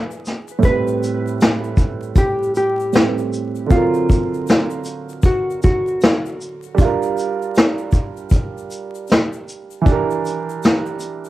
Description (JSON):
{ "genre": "lo-fi hip hop", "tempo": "78 BPM", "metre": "4/4", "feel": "swing 64% on 16ths", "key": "D minor", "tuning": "A4 = 440 Hz", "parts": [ { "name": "dark upright piano", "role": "accompaniment", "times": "0.0-11.3 s", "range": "A2 to E#5", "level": "-22 LUFS", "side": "right 5 dB", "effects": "cassette tape, low-pass filter" }, { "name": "egg shaker", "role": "percussion", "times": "0.1-11.3 s", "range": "none", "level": "-45 LUFS", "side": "left 11 dB", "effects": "none" }, { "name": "vintage brush drum kit", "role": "drums", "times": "0.3-11.2 s", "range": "hi-hat, kick drum, shaker, snare drum", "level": "-15 LUFS", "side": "equal", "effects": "cassette tape" }, { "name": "hollow-body jazz guitar", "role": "melody", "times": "0.6-6.7 s", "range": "E#4 to B4", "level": "-22 LUFS", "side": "left 1 dB", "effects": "low-pass filter, tape echo" } ], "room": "light reverb", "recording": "home recording on cassette, vinyl crackle", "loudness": "-15 LUFS", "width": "side -15 dB against mid", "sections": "0.0-11.3 A section", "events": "none", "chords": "0.0 E7b9; 0.6 Am9; 3.7 D7alt; 6.8 Gm7; 9.9 Em7b5" }